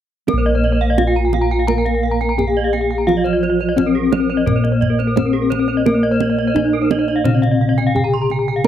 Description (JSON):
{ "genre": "Balinese gamelan", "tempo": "86 BPM", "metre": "4/4", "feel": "straight", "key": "Bb slendro", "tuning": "A4 = 439 Hz", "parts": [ { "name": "gamelan-type bronze metallophone", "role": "melody", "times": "0.3-8.7 s", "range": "Bb3 to Bb4", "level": "-18 LUFS", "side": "left 2 dB", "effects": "none" }, { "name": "gamelan-type bronze metallophone", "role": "accompaniment", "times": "0.3-8.7 s", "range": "C3+30c to Bb3", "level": "-23 LUFS", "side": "right 6 dB", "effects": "none" }, { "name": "gamelan-type bronze metallophone", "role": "arpeggios", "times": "0.3-8.7 s", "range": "Bb4 to Bb5", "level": "-23 LUFS", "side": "left 4 dB", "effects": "none" }, { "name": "gamelan-type bossed gongs", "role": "bass", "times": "0.3-8.7 s", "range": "Bb1 to Bb4", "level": "-20 LUFS", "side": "equal", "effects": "none" }, { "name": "kendang", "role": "percussion", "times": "0.3-8.7 s", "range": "none", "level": "-22 LUFS", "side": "right 7 dB", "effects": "none" }, { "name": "gamelan-type bronze metallophone", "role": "arpeggios", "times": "0.4-8.6 s", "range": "Ab4-45c to C6+30c", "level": "-25 LUFS", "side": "right 9 dB", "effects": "none" } ], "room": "studio reverb", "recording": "dry, close 1970s-style studio recording", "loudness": "-14 LUFS", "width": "side -10 dB against mid", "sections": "0.3-8.7 A section", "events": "none", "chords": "none" }